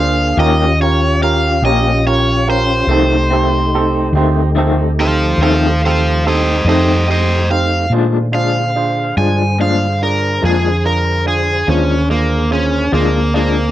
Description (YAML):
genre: blues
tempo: 48 BPM (dotted quarters)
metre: 12/8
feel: straight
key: Bb mixolydian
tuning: A4 = 439 Hz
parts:
  - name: cranked stack guitar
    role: melody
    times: 0.0-13.7 s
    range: Bb3 to Ab5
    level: -17 LUFS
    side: equal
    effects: overdrive
  - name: clear grand piano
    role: accompaniment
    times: 0.0-13.7 s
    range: Bb3 to D5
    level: -20 LUFS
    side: right 6 dB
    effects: none
  - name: tonewheel organ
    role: sustained chords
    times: 0.0-13.7 s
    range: D3 to C5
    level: -22 LUFS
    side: left 1 dB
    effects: slow rotary speaker, overdrive, chorus vibrato
  - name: hollow-body short-scale fingered electric bass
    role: bass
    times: 0.0-13.7 s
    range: Bb1 to Bb2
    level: -16 LUFS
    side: equal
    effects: none
  - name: electric guitar through a small old amp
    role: accompaniment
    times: 0.4-13.6 s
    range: F2 to G4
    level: -18 LUFS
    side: left 5 dB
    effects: tremolo
room: little or no reverb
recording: dry, close 1970s-style studio recording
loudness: -12 LUFS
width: side -13 dB against mid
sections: 0.0-7.9 A section; 7.9-13.7 A section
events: overdriven electric guitar solo 0.0-7.9, 7.9-13.7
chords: 0.4 Eb7; 2.9 F7; 7.9 Bb7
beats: 0.39 1.64 | 2.90 4.15 5.40 6.66 | 7.91 9.16 10.42 11.67 | 12.93